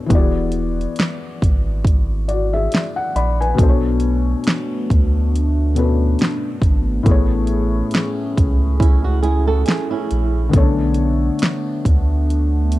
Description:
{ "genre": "lo-fi hip hop", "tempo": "69 BPM", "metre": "4/4", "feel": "swing 56% on 16ths", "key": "B dorian", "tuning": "A4 = 440 Hz", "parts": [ { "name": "felt-muted upright piano", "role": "accompaniment", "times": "0.0-12.8 s", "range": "A2 to B5", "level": "-22 LUFS", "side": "left 4 dB", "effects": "cassette tape, low-pass filter" }, { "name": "soft dub sub bass", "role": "bass", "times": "0.1-12.8 s", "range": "E1 to D2", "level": "-18 LUFS", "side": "equal", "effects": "none" }, { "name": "pop drum kit", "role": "drums", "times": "0.1-12.8 s", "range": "hi-hat, kick drum, snare drum", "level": "-17 LUFS", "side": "equal", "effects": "none" }, { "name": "hollow soft pad", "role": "sustained chords", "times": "3.6-12.8 s", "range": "A3 to G#4", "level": "-25 LUFS", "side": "right 1 dB", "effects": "chorus, low-pass filter" }, { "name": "flamenco guitar", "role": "second line", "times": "8.8-10.5 s", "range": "C#4 to A4", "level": "-23 LUFS", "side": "right 6 dB", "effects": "low-pass filter, analog delay" } ], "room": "little or no reverb", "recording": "dark, warm production", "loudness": "-15 LUFS", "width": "side -16 dB against mid", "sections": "0.0-12.8 A section", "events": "none", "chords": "0.1 E9; 3.6 Bm7; 7.1 Amaj7; 10.5 Bm7" }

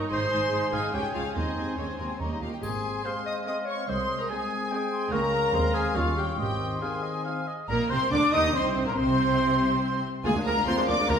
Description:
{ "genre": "classical, dramatic, fast romantic movement for symphony orchestra", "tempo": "142 BPM", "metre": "3/4", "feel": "straight", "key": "Ab major", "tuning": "A4 = 441 Hz", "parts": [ { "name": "warm symphonic violin section", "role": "melody", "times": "0.0-11.2 s", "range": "Eb5 to Eb6", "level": "-32 LUFS", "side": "left 3 dB", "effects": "none" }, { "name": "warm oboe", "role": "second line", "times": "0.0-11.2 s", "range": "Ab4 to Bb5", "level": "-34 LUFS", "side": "right 2 dB", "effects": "none" }, { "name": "rich symphonic viola section", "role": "accompaniment", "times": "0.0-11.1 s", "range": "F3 to Ab4", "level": "-32 LUFS", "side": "right 2 dB", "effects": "none" }, { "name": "mellow French horn section", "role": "sustained chords", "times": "0.0-11.2 s", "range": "Eb3 to Eb4", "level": "-34 LUFS", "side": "left 4 dB", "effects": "none" }, { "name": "concert flute", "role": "second line", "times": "0.1-11.2 s", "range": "F5 to Eb6", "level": "-35 LUFS", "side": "left 1 dB", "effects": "none" }, { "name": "warm clarinet", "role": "second line", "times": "0.1-11.2 s", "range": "Bb3 to Eb5", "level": "-32 LUFS", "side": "equal", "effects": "none" }, { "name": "warm symphonic violin section", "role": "second line", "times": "0.1-11.2 s", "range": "Ab4 to Eb6", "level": "-34 LUFS", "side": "left 2 dB", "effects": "none" }, { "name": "warm symphonic cello section", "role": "bass", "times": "0.1-11.1 s", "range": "C2 to Eb3", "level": "-32 LUFS", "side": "right 2 dB", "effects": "none" }, { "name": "warm symphonic double bass section", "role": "bass", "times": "0.1-11.1 s", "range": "Ab1 to Eb2", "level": "-34 LUFS", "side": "right 2 dB", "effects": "none" }, { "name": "triangle", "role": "percussion", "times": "2.6-3.4 s", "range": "none", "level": "-50 LUFS", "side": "left 2 dB", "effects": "none" } ], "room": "wet recital hall reverb, RT60 1.5 s", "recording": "recorded in a church or concert hall", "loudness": "-24 LUFS", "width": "side -7 dB against mid", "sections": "0.0-7.7 A section; 7.7-11.2 B section", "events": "none", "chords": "0.1 Ab; 0.9 Db; 1.4 Ab/Eb; 2.2 Eb; 2.6 Ab; 3.9 Ab/C; 5.1 Bbm7/Db; 5.5 Ab/Eb; 6.0 Eb9; 6.4 Ab; 7.7 Eb5/Bb; 9.0 N.C.; 10.2 Bb7/D" }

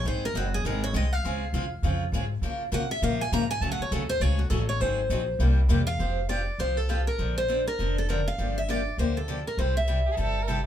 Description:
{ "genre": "acoustic string swing (jazz manouche)", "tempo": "202 BPM", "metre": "4/4", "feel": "swing 60% on 8ths", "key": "Db major, F major from 6.0 s", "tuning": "A4 = 440 Hz", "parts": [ { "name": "picked steel-string acoustic guitar", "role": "melody", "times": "0.0-10.2 s", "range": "Gb4 to Bb5", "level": "-30 LUFS", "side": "equal", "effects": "none" }, { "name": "upright bass", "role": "bass", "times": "0.0-10.7 s", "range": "F1 to Db3", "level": "-27 LUFS", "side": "equal", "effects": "none" }, { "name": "picked steel-string acoustic guitar", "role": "accompaniment", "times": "0.1-10.6 s", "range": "C3 to C5", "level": "-30 LUFS", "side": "left 1 dB", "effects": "none" }, { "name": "warm violin", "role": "second line", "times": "10.1-10.6 s", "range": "G4 to Bb4", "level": "-32 LUFS", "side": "right 2 dB", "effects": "none" } ], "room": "wet small room reverb, RT60 0.5 s", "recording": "band playing live in one room", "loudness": "-24 LUFS", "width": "side -10 dB against mid", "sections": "0.0-6.0 A section; 6.0-10.7 B section", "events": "steel-string acoustic guitar solo 0.0-6.0", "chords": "0.1 Ab; 1.2 Dbmaj7; 2.4 Bbm; 3.6 Gbmadd9; 4.8 Ab7; 5.4 C7; 6.0 Fsus2; 7.2 Bbadd9; 8.4 Gm7; 9.6 C" }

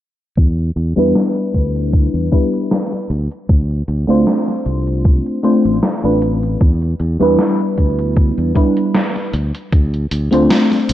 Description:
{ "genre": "vaporwave", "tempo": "77 BPM", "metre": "4/4", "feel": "swing 54% on 16ths", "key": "unclear", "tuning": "A4 = 438 Hz", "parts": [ { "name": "modern bright fingered electric bass", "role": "bass", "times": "0.4-10.9 s", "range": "A1 to E2", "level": "-18 LUFS", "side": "equal", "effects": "none" }, { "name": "electronic kick drum", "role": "drums", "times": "0.4-9.9 s", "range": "none", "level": "-12 LUFS", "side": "equal", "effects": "studio reverb" }, { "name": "gated 80s digital drum machine", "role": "drums", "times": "0.4-10.9 s", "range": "hi-hat, snare drum", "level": "-19 LUFS", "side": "equal", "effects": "gated reverb, gated reverb snare, studio reverb" }, { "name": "mellow FM electric piano", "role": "accompaniment", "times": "1.0-10.9 s", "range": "G3 to C5", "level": "-15 LUFS", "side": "equal", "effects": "phaser, wide subtle chorus, vintage 12-bit sampler grit, analog delay" } ], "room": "little or no reverb", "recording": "dry, gritty hardware recording, low-pass filter", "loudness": "-13 LUFS", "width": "side -13 dB against mid", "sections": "0.4-10.9 A section", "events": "filter sweep 0.4-10.9", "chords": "0.4 Em7; 3.1 Dm7; 6.6 Em7; 9.3 Dm7" }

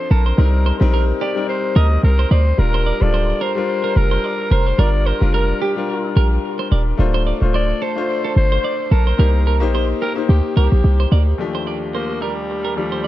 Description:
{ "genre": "afrobeats", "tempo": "109 BPM", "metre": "4/4", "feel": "swing 55% on 16ths", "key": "unclear", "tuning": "A4 = 444 Hz", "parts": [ { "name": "growling alto saxophone", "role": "melody", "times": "0.0-13.1 s", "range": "G3 to Eb5", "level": "-24 LUFS", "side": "equal", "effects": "tape echo" }, { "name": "bright concert grand piano", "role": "accompaniment", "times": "0.0-13.1 s", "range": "Eb2 to C5", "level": "-23 LUFS", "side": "left 5 dB", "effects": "tape echo" }, { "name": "clean electric guitar", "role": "riff", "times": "0.1-13.1 s", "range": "G4 to D5", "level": "-26 LUFS", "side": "right 7 dB", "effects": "tape echo" }, { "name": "warm 808-style bass", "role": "bass", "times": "0.1-11.3 s", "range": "D1 to D2", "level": "-14 LUFS", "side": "equal", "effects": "none" } ], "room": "studio ambience", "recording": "echo-heavy mix", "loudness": "-15 LUFS", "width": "side -14 dB against mid", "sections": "0.0-11.4 A section; 11.4-13.1 B section", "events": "none", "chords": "0.4 Cm7; 2.6 Ebmaj9#11; 4.8 Gm7; 7.0 Dm7; 9.2 Cm7; 11.4 Ebmaj9#11" }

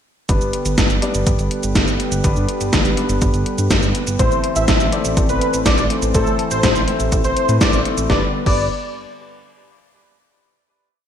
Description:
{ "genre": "italo disco", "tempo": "123 BPM", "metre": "4/4", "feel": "straight", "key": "G major", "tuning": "A4 = 440 Hz", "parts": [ { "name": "warm analog pad", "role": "sustained chords", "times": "0.3-8.3 s", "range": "D3 to C5", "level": "-24 LUFS", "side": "right 1 dB", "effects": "chorus" }, { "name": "warm grand piano", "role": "stabs", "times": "0.3-8.6 s", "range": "G3 to D5", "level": "-25 LUFS", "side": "left 4 dB", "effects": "ping-pong delay" }, { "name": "chorused synth bass", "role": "bass", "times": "0.3-8.7 s", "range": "G1 to A2", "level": "-21 LUFS", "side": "equal", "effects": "none" }, { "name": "electronic kick drum", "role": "drums", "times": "0.3-8.6 s", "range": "none", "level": "-20 LUFS", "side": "equal", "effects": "overdrive, small room reverb" }, { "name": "gated 80s digital drum machine", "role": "drums", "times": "0.3-8.6 s", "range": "cabasa, crash cymbal, hi-hat, snare drum", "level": "-20 LUFS", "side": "equal", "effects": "gated reverb, gated reverb snare, small room reverb" }, { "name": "wide unison lead", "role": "melody", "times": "4.2-8.6 s", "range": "A4 to E5", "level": "-21 LUFS", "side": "equal", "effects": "ping-pong delay" } ], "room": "moderate lush hall reverb, RT60 1.5 s, digital ambience", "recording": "bright 1980s-style digital production", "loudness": "-15 LUFS", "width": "side -9 dB against mid", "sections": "0.3-8.1 verse; 8.1-10.0 final chord", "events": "none", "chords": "0.3 G; 4.2 Am; 8.1 G" }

